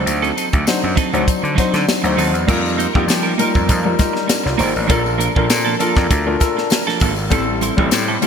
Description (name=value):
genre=polished 1980s jazz-funk pop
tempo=99 BPM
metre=4/4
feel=swing 54% on 16ths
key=unclear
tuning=A4 = 438 Hz
part: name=warm concert grand piano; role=accompaniment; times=0.0-8.3 s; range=F#3 to D5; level=-19 LUFS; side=left 3 dB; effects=analog chorus
part: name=clean electric guitar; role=riff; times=0.0-8.3 s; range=F3 to C5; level=-22 LUFS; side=right 6 dB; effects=analog chorus
part: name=gritty slap bass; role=bass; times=0.0-8.2 s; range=Ab1 to F3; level=-20 LUFS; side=equal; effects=overdrive
part: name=tight funk drum kit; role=drums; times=0.1-8.3 s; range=crash cymbal, hi-hat, kick drum, snare drum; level=-19 LUFS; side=equal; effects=gated reverb
part: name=tambourine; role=percussion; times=0.1-8.3 s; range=none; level=-30 LUFS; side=left 8 dB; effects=none
room=moderate lush hall reverb, RT60 3.1 s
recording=bright 1980s-style digital production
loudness=-14 LUFS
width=side -7 dB against mid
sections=0.0-2.5 A section; 2.5-8.3 B section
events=none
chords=0.0 D7b9; 2.5 F9sus4; 4.9 Bbmaj7; 7.3 Am7